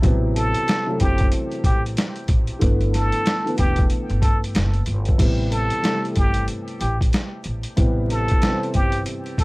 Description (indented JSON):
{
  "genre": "hip hop, boom-bap hip-hop",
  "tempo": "93 BPM",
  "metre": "4/4",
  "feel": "swing 61% on 16ths",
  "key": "A dorian",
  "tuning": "A4 = 443 Hz",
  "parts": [
    { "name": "dark grand piano", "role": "accompaniment", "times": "0.0-9.4 s", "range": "C3 to C4", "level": "-26 LUFS", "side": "equal", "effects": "high-pass filter, low-pass filter" },
    { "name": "upright bass", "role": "bass", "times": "0.0-9.4 s", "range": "E1 to G2", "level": "-23 LUFS", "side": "equal", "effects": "none" },
    { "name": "boom bap sampler-style drum kit", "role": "drums", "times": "0.0-9.4 s", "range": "crash cymbal, hi-hat, kick drum, snare drum", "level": "-20 LUFS", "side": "equal", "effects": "none" },
    { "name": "trumpet with plunger mute", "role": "melody", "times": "0.4-9.4 s", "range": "G4 to A4", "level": "-26 LUFS", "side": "equal", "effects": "high-pass filter, low-pass filter, analog delay" }
  ],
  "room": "little or no reverb",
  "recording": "dry, gritty hardware recording, vinyl crackle",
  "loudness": "-18 LUFS",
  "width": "side -23 dB against mid",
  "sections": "0.0-5.2 A section; 5.2-9.4 B section",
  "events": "none",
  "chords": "0.0 F#m7b5; 2.6 G69; 5.2 Am9"
}